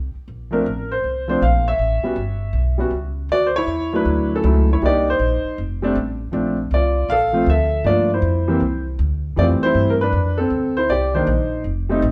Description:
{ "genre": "jazz piano trio", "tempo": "158 BPM", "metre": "4/4", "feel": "swing 66% on 8ths", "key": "unclear", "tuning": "A4 = 440 Hz", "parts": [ { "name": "upright bass", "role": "bass", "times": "0.0-12.1 s", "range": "F1 to G2", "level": "-24 LUFS", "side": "equal", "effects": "none" }, { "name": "warm grand piano", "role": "melody", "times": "0.5-12.0 s", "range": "Eb3 to F5", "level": "-21 LUFS", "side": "equal", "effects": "none" } ], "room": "wet studio reverb, RT60 0.9 s", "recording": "heard from further back in the room", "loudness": "-19 LUFS", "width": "mono", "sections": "0.0-3.3 A section; 3.3-12.1 B section", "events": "none", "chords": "0.3 Bbmaj7sus2; 1.8 A9; 3.3 Dmaj9; 4.8 Cm9; 5.6 F; 6.3 Bbmaj9; 7.9 Gm7; 8.6 Cadd9; 9.4 Fmaj9; 10.9 Cm7", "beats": "| 0.27 0.65 1.03 1.41 | 1.78 2.17 2.54 2.92 | 3.30 3.68 4.06 4.44 | 4.82 5.20 5.58 5.96 | 6.34 6.72 7.10 7.48 | 7.86 8.24 8.62 8.99 | 9.37 9.75 10.13 10.51 | 10.89 11.27 11.65 12.03" }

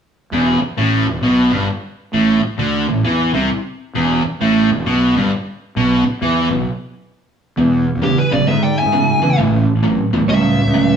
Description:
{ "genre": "rock", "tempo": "133 BPM", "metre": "4/4", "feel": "swing 65% on 8ths", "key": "E mixolydian", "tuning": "A4 = 440 Hz", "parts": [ { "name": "overdriven electric guitar", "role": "riff", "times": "0.3-11.0 s", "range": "E2 to G3", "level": "-16 LUFS", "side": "right 1 dB", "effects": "none" }, { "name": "fuzz fingered electric bass", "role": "bass", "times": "0.3-11.0 s", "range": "E1 to E3", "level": "-19 LUFS", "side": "right 1 dB", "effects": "overdrive" }, { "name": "fuzz lead guitar", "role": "melody", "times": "8.0-11.0 s", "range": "G4 to G#5", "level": "-19 LUFS", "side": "left 2 dB", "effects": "distortion" }, { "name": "lightly driven lead guitar", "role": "second line", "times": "8.0-11.0 s", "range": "D4 to E5", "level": "-27 LUFS", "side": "right 3 dB", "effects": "none" } ], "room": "wet stone room reverb, RT60 1.1 s", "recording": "band playing live in one room, small room ambience", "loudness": "-14 LUFS", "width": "side -7 dB against mid", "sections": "0.3-7.6 A section; 7.6-11.0 B section", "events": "stop 6.7-7.6", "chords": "0.3 E5; 2.1 A5; 4.0 E5; 5.8 Bsus4; 7.6 E7; 9.4 A7", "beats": "| 0.32 0.78 1.23 1.68 | 2.14 2.59 3.05 3.50 | 3.95 4.41 4.86 5.31 | 5.76 6.22 6.67 7.12 | 7.57 8.03 8.48 8.93 | 9.38 9.83 10.28 10.73" }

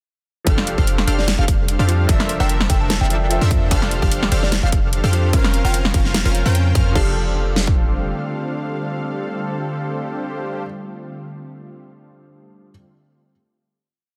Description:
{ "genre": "future bass", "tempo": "148 BPM", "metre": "4/4", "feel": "swing 55% on 16ths, half-time", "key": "F major", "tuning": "A4 = 440 Hz", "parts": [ { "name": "warm grand piano", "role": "accompaniment", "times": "0.4-12.7 s", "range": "F3 to E5", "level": "-32 LUFS", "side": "equal", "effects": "sidechain pumping, digital delay" }, { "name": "ethereal airy pad", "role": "sustained chords", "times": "1.6-10.6 s", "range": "Db3 to E5", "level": "-33 LUFS", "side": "equal", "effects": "ensemble chorus, built-in reverb, sidechain pumping" }, { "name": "unison pluck", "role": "arpeggios", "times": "0.5-10.6 s", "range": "E6 to G6", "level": "-35 LUFS", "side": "equal", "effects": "phaser, sidechain pumping, digital delay" }, { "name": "supersaw stab", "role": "riff", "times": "0.5-10.6 s", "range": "Db4 to G5", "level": "-28 LUFS", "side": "equal", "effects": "sidechain pumping, digital delay" }, { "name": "warm 808-style bass", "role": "bass", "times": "0.5-8.1 s", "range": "F1 to F2", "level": "-22 LUFS", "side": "equal", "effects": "sidechain pumping" }, { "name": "dubstep drum kit", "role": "drums", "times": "0.5-7.8 s", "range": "kick drum, snare drum", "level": "-21 LUFS", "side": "equal", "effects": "none" }, { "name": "dubstep drum kit", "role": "drums", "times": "0.5-7.0 s", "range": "crash cymbal, hi-hat, snare drum", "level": "-25 LUFS", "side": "equal", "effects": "none" }, { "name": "bell-like FM electric piano", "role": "melody", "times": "1.2-5.8 s", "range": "D5 to A5", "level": "-33 LUFS", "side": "equal", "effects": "chorus, sidechain pumping, dub echo" } ], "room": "digital ambience", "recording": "dense, heavily limited modern master", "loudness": "-19 LUFS", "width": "mono", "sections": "0.5-7.0 drop; 7.0-10.2 final chord", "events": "drop 0.5-7.0", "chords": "0.5 F69; 2.1 Bbmaj9#11/F; 3.7 F69; 5.3 Bbmadd9/F; 7.0 F69", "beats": "| 0.47 0.87 1.28 1.68 | 2.09 2.50 2.90 3.31 | 3.71 4.12 4.52 4.93 | 5.33 5.74 6.14 6.55 | 6.95 7.36 7.76 8.17 | 8.58 8.98 9.39 9.79" }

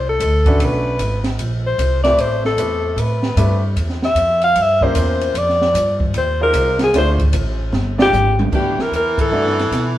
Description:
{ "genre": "jazz, small-group swing and bop", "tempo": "151 BPM", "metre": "4/4", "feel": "swing 64% on 8ths", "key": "C major", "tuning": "A4 = 440 Hz", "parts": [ { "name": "mellow alto saxophone", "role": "melody", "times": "0.0-9.9 s", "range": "G4 to F5", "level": "-17 LUFS", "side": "left 1 dB", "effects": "none" }, { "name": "upright bass", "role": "bass", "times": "0.0-10.0 s", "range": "G1 to B2", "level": "-19 LUFS", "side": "equal", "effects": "none" }, { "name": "open jazz drum kit", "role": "drums", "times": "0.2-9.8 s", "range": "crash cymbal, hi-hat, kick drum, ride cymbal, snare drum, toms", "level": "-23 LUFS", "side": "right 1 dB", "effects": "none" }, { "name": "clear baby grand piano", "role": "accompaniment", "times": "0.5-9.6 s", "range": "Ab3 to D5", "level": "-24 LUFS", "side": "equal", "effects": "none" }, { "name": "bright baritone saxophone", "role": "second line", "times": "8.5-10.0 s", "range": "E3", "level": "-23 LUFS", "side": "right 3 dB", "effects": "none" } ], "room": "wet stone room reverb, RT60 1.3 s", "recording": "band playing live in one room", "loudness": "-14 LUFS", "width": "side -13 dB against mid", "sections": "0.0-8.5 A section; 8.5-10.0 B section", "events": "alto saxophone solo 0.0-8.5; drum fill 7.7-8.5; band accent 9.1", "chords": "0.0 D5; 0.6 Bm7; 1.4 Bbsus2; 2.2 Am9; 3.8 C7b9; 5.3 Fm9; 6.9 Dm7; 7.7 G5; 8.5 Gmaj13", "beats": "0.20 | 0.59 0.99 1.39 1.78 | 2.18 2.58 2.97 3.37 | 3.76 4.16 4.56 4.95 | 5.35 5.75 6.14 6.54 | 6.93 7.33 7.73 8.12 | 8.52 8.92 9.31 9.71" }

